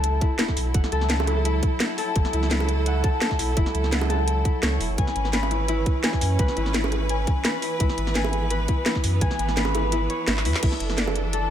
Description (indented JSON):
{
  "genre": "liquid drum and bass",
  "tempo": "170 BPM",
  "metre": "4/4",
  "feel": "straight",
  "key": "F# minor",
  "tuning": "A4 = 438 Hz",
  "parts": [
    { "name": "bright studio string section", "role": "sustained chords", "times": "0.0-11.5 s", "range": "E3 to B4", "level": "-31 LUFS", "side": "right 4 dB", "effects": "sidechain pumping" },
    { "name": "Celtic harp", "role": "arpeggios", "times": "0.0-11.5 s", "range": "E4 to G#5", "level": "-28 LUFS", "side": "left 4 dB", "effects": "tape echo" },
    { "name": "warm sub bass", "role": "bass", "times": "0.0-11.5 s", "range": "E1 to F#2", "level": "-25 LUFS", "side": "equal", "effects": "none" },
    { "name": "garage drum kit", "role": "drums", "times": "0.0-11.4 s", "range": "crash cymbal, handclaps, hi-hat, snare drum", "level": "-27 LUFS", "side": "equal", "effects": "none" },
    { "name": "sub drop", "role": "sound effects", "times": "0.0-0.7 s", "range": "none", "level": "barely audible", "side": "none", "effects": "none" },
    { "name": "electronic kick drum", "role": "drums", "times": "0.2-10.7 s", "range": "none", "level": "-23 LUFS", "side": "equal", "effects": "none" },
    { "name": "bongos", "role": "percussion", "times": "1.2-11.1 s", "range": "none", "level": "-32 LUFS", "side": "right 7 dB", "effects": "none" }
  ],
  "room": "light reverb, digital ambience",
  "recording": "none",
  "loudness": "-21 LUFS",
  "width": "side -10 dB against mid",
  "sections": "0.0-11.5 A section",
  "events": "impact 0.0-0.7; kick drops out 9.9-10.6; drum fill 10.4",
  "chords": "0.0 F#m7; 5.0 C#m7; 10.6 Bm7"
}